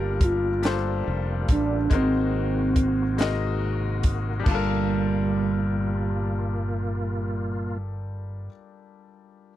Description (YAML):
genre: slow six-eight R&B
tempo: 47 BPM (dotted quarters)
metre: 6/8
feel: straight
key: G minor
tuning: A4 = 440 Hz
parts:
  - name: mellow horn-like synth lead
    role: melody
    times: 0.0-7.8 s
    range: G3 to G4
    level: -26 LUFS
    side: right 2 dB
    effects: chorus
  - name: clear concert grand piano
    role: accompaniment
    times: 0.0-9.5 s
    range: G3 to Eb5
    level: -32 LUFS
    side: left 9 dB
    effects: none
  - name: tonewheel organ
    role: sustained chords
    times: 0.0-7.8 s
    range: Bb2 to Gb4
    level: -34 LUFS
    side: right 1 dB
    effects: chorus vibrato, fast rotary speaker
  - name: fretless electric bass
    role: bass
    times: 0.0-8.5 s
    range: F1 to A1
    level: -27 LUFS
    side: equal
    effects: none
  - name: compact cocktail drum kit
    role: drums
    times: 0.2-4.7 s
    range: crash cymbal, hi-hat, kick drum, snare drum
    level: -23 LUFS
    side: equal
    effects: none
room: small room ambience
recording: dry, close 1970s-style studio recording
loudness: -22 LUFS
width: side -13 dB against mid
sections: 0.0-4.5 A section; 4.5-7.0 B section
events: none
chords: 0.0 Gm9; 1.9 Ab9; 4.5 Gm9